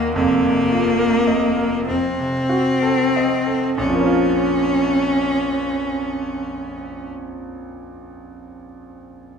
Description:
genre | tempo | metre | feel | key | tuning
classical, romantic duo for cello and grand piano | 30-37 BPM (dotted quarters) | 6/8 | rubato | Bb minor | A4 = 442 Hz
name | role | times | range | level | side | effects
rich cello | melody | 0.0-7.1 s | Bb3 to Db4 | -20 LUFS | left 2 dB | none
bright concert grand piano | accompaniment | 0.0-9.4 s | F1 to Eb5 | -21 LUFS | right 2 dB | none
room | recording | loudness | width
wet recital hall reverb, RT60 1.4 s | recorded in a church or concert hall | -16 LUFS | side -6 dB against mid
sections
0.0-3.8 A section; 3.8-7.5 B section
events
slowing down 0.0-3.8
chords
0.1 F7sus4; 1.9 F7b9; 3.8 Bbm

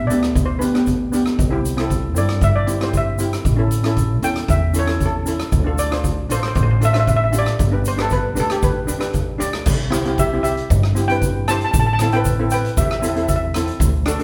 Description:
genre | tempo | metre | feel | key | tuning
calypso | 116 BPM | 4/4 | straight | C major | A4 = 441 Hz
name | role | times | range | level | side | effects
upright bass | bass | 0.0-14.2 s | G1 to G2 | -23 LUFS | equal | none
steel pan | melody | 0.1-13.4 s | G4 to A5 | -25 LUFS | equal | none
steel pan | accompaniment | 0.1-14.2 s | B3 to D5 | -25 LUFS | equal | none
street-band drum kit | drums | 0.1-14.2 s | crash cymbal, hi-hat, kick drum, rim click | -24 LUFS | equal | none
egg shaker | percussion | 0.1-14.2 s | none | -35 LUFS | equal | none
room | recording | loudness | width
wet stone room reverb, RT60 1.3 s | band playing live in one room | -19 LUFS | mono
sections
0.0-9.7 A section; 9.7-14.2 B section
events
steel pan solo 0.0-9.7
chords
0.0 G; 1.4 C; 3.5 A; 5.5 Dm7; 7.6 G; 9.7 C; 11.7 Am7

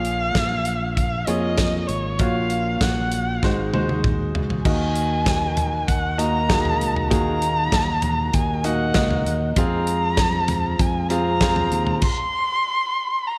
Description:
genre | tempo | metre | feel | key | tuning
piano-driven pop | 98 BPM | 4/4 | straight | unclear | A4 = 440 Hz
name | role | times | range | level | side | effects
warm erhu | melody | 0.0-13.4 s | Db5 to C6 | -26 LUFS | equal | none
clear concert grand piano | accompaniment | 0.0-12.0 s | Ab2 to F5 | -28 LUFS | equal | slapback echo
fingered electric bass | bass | 0.0-12.0 s | Ab1 to F2 | -28 LUFS | equal | none
modern studio drum kit | drums | 0.0-12.2 s | crash cymbal, hi-hat, kick drum, snare drum, toms | -26 LUFS | equal | none
mellow tonewheel organ | sustained chords | 4.7-12.0 s | Eb3 to Bb4 | -35 LUFS | equal | none
room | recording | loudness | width
moderate lush hall reverb, RT60 1.6 s, small room ambience | big arena sound | -21 LUFS | mono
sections
0.0-4.7 A section; 4.7-13.4 B section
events
drum fill 3.4-4.7; stop 12.0-13.4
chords
0.0 Bbm7; 2.2 Gbmaj7/Bb; 3.4 Ab7; 4.7 Ebm; 9.6 Fm

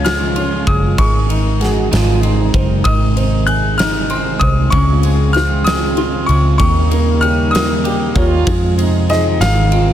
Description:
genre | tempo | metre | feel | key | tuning
six-eight pop ballad | 64 BPM (dotted quarters) | 6/8 | straight | Db major | A4 = 444 Hz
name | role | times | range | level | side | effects
clear concert grand piano | melody | 0.0-9.9 s | Eb5 to Gb6 | -19 LUFS | left 2 dB | none
warm baby grand piano | accompaniment | 0.0-9.9 s | Db3 to C6 | -22 LUFS | left 4 dB | none
chorused pulse-width pad | sustained chords | 0.0-9.9 s | C3 to F4 | -22 LUFS | equal | none
twelve-string electric guitar | arpeggios | 0.0-9.9 s | Eb3 to G4 | -24 LUFS | right 9 dB | spring reverb, digital delay
vintage muted fingered electric bass | bass | 0.0-9.9 s | Gb1 to F2 | -16 LUFS | equal | none
huge arena drum kit | drums | 0.1-9.9 s | kick drum, ride cymbal, snare drum | -19 LUFS | equal | none
mellow French horn section | second line | 1.6-2.7, 8.2-9.9 s | Eb4 to Gb4 | -20 LUFS | right 5 dB | digital delay
room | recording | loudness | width
small room ambience | dense, heavily limited modern master | -12 LUFS | side -11 dB against mid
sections
0.0-9.9 A section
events
none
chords
0.0 Db; 1.0 Absus4; 1.9 Ab; 4.7 Dbmaj7; 6.6 Eb7; 8.5 Fm; 9.4 Ab

